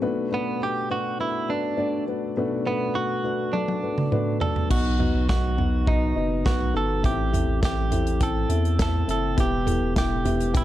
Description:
piano-driven pop; 103 BPM; 4/4; straight; A4 = 440 Hz
dark upright piano; accompaniment; 0.0-10.6 s; B1 to G5; -27 LUFS; left 4 dB
direct-recorded clean electric guitar; melody; 0.3-10.6 s; B3 to A4; -28 LUFS; right 4 dB
modern studio drum kit; drums; 3.5-10.6 s; crash cymbal, hi-hat, kick drum, snare drum, toms; -25 LUFS; right 1 dB
round analog bass; bass; 4.7-10.6 s; E1 to E2; -25 LUFS; equal
studio ambience; dark, warm production; -22 LUFS; side -13 dB against mid
0.0-4.7 A section; 4.7-10.6 B section
drum fill 3.5-4.7
0.0 Bm7; 4.7 B; 7.0 Am; 9.4 Em
| 0.02 0.61 1.19 1.78 | 2.37 2.95 3.54 4.12 | 4.71 5.29 5.87 6.46 | 7.04 7.63 8.21 8.79 | 9.38 9.96 10.54

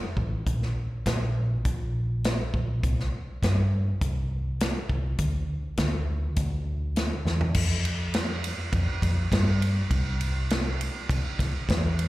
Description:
folk rock and heartland rock; 102 BPM; 4/4; straight; C mixolydian; A4 = 440 Hz
hollow-body short-scale picked electric bass; bass; 0.2-12.1 s; A1 to G2; -26 LUFS; equal
natural country drum kit; drums; 0.2-12.1 s; crash cymbal, hi-hat, kick drum, ride cymbal, snare drum, toms; -28 LUFS; equal
little or no reverb; live gig heard through the venue's PA, recital hall reverb; -24 LUFS; side -17 dB against mid
0.0-7.5 A section; 7.5-12.1 B section
drum fill 7.3
| 0.47 1.05 1.65 2.24 | 2.83 3.42 4.01 4.60 | 5.19 5.78 6.37 6.96 | 7.55 8.14 8.73 9.32 | 9.91 10.50 11.09 11.68

